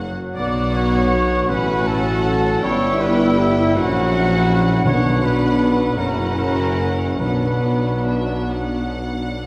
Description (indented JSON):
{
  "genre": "classical",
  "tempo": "53 BPM (dotted quarters)",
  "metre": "6/8",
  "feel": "uneven beats, rubato",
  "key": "B minor",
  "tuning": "A4 = 435 Hz",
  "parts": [
    { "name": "bright studio violin section", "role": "melody", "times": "0.0-9.5 s", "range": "E5 to G5", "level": "-34 LUFS", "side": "equal", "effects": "none" },
    { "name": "clear studio violin section", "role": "second line", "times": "0.0-9.5 s", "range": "D4 to F#4", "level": "-35 LUFS", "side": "equal", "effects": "none" },
    { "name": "warm oboe", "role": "second line", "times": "0.0-9.4 s", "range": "E5 to F#5", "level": "-33 LUFS", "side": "equal", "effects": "none" },
    { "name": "mellow bassoon", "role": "accompaniment", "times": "0.0-9.4 s", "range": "F#3 to G3", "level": "-31 LUFS", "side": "equal", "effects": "none" },
    { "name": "rich studio viola section", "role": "accompaniment", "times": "0.0-9.5 s", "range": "A#3 to C#4", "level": "-31 LUFS", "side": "equal", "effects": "none" },
    { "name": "concert harp", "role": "arpeggios", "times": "0.0-9.5 s", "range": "F#2 to B5", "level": "-34 LUFS", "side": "equal", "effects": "none" },
    { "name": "mellow tuba", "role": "bass", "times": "0.0-9.5 s", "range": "F#1 to B1", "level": "-26 LUFS", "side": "equal", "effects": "none" },
    { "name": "rich studio cello section", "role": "bass", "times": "0.0-9.5 s", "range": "F#2 to B2", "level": "-29 LUFS", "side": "equal", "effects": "none" },
    { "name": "rich studio double bass section", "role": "bass", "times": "0.0-9.5 s", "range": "F#1 to B1", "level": "-28 LUFS", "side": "equal", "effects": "none" },
    { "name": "mellow clarinet", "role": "second line", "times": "0.3-9.4 s", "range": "B3 to E4", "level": "-33 LUFS", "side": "equal", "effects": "none" },
    { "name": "dark trombone section", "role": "sustained chords", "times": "0.3-9.4 s", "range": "F#3 to E4", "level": "-32 LUFS", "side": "equal", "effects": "none" },
    { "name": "hollow concert flute", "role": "second line", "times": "0.4-8.5 s", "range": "E5 to D6", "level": "-31 LUFS", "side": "equal", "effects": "none" },
    { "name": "warm trumpet section", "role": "stabs", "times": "0.4-8.5 s", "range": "E4 to D5", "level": "-27 LUFS", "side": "equal", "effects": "none" },
    { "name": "dark French horn section", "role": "sustained chords", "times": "1.5-9.1 s", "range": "B3 to F#4", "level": "-28 LUFS", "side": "equal", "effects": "none" },
    { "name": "timpani", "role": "percussion", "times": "4.9-8.5 s", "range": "B2", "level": "-29 LUFS", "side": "equal", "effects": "none" }
  ],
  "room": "wet scoring stage reverb, RT60 1.7 s",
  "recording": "heard from further back in the room",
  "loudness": "-19 LUFS",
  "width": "mono",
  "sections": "0.0-9.5 A section",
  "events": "none",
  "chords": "0.4 Bm; 1.5 F#m/A; 2.6 Em/G; 3.8 F#7/A#; 4.9 Bm; 6.0 F#7; 7.2 Bm",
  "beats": "| 0.36 1.50 | 2.63 3.76 | 4.85 5.97 | 7.20 8.49"
}